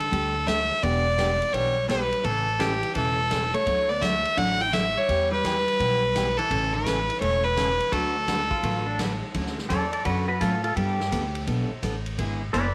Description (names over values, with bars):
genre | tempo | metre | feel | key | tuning
country, western swing | 169 BPM | 4/4 | swing 65% on 8ths | D major | A4 = 436 Hz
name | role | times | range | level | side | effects
clear fiddle | melody | 0.0-9.0 s | G4 to G5 | -26 LUFS | equal | slapback echo
hollow-body jazz guitar | second line | 0.0-9.0 s | D3 to E4 | -36 LUFS | equal | none
swinging big-band drum kit | drums | 0.0-12.6 s | hi-hat, kick drum, ride cymbal, snare drum | -37 LUFS | equal | none
picked steel-string acoustic guitar | accompaniment | 0.1-12.7 s | C#3 to B4 | -33 LUFS | equal | none
upright bass | bass | 0.1-12.7 s | E1 to A2 | -32 LUFS | equal | none
pedal steel guitar | second line | 8.5-12.7 s | D4 to D5 | -31 LUFS | equal | none
room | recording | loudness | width
light reverb, small room ambience | none | -25 LUFS | mono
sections
0.0-9.3 A section; 9.3-12.7 B section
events
pedal steel guitar solo 9.3-12.7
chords
0.0 Gsus2; 0.8 Em7; 2.2 A; 3.7 Dadd9; 5.1 Em; 6.5 A; 7.9 D6; 9.3 Dmaj7; 10.8 Gadd9; 12.2 E7